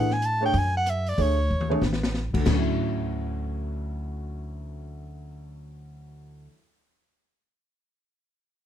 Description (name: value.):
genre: modal jazz.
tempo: 188 BPM.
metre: 4/4.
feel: swing 64% on 8ths.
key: D lydian.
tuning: A4 = 440 Hz.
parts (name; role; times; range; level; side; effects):
mellow soprano saxophone; melody; 0.0-1.7 s; C#5 to A5; -26 LUFS; equal; none.
warm baby grand piano; accompaniment; 0.0-6.6 s; D2 to C#5; -30 LUFS; left 1 dB; none.
upright bass; bass; 0.0-6.5 s; A1 to A2; -29 LUFS; equal; none.
open jazz drum kit; drums; 0.1-2.6 s; crash cymbal, hi-hat, kick drum, rim click, snare drum, toms; -28 LUFS; equal; none.
room: light reverb.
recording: close, detailed microphones.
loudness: -23 LUFS.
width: side -10 dB against mid.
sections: 0.0-2.5 A section; 2.5-5.0 B section.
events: soprano saxophone solo 0.0-2.5; drum fill 1.5-2.1.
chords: 0.0 Dmaj7; 2.5 Dmaj9.